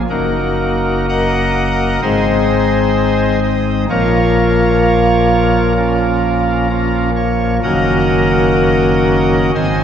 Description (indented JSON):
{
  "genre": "classical, chorale-style piece for pipe organ",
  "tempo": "64 BPM",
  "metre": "4/4",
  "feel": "rubato",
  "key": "unclear",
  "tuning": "A4 = 442 Hz",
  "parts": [
    { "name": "pipe organ, cornet", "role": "solo", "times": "0.0-9.8 s", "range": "Gb1 to Ab5", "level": "-12 LUFS", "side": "equal", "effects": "none" }
  ],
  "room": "wet church reverb, RT60 2.6 s",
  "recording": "nothing above 8.0 kHz",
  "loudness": "-12 LUFS",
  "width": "side -8 dB against mid",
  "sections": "0.0-9.8 A section",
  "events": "none",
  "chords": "0.1 Ebm/Gb; 2.0 Ab; 3.9 Bbm; 7.6 Ebm7/Gb"
}